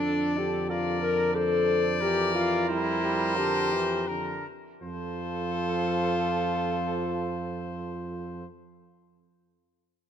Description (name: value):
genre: classical, brass quintet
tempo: 78-92 BPM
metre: 4/4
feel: rubato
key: F major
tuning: A4 = 440 Hz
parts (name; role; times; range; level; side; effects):
- clear trumpet; melody; 0.0-8.5 s; Bb4 to D5; -33 LUFS; left 6 dB; none
- warm flugelhorn; second line; 0.0-8.5 s; A4 to C5; -34 LUFS; right 9 dB; none
- mellow French horn; accompaniment; 0.0-8.5 s; D4 to Bb4; -29 LUFS; left 4 dB; none
- warm trombone; accompaniment; 0.0-8.5 s; D3 to G3; -36 LUFS; right 5 dB; none
- mellow tuba; bass; 0.0-8.5 s; F2; -33 LUFS; right 5 dB; none
room: light reverb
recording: close, detailed microphones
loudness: -25 LUFS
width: side -8 dB against mid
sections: 0.0-4.8 A section; 4.8-7.7 B section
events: slowing down 0.0-4.8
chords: 0.0 Bb/F; 2.0 C7/F; 4.8 F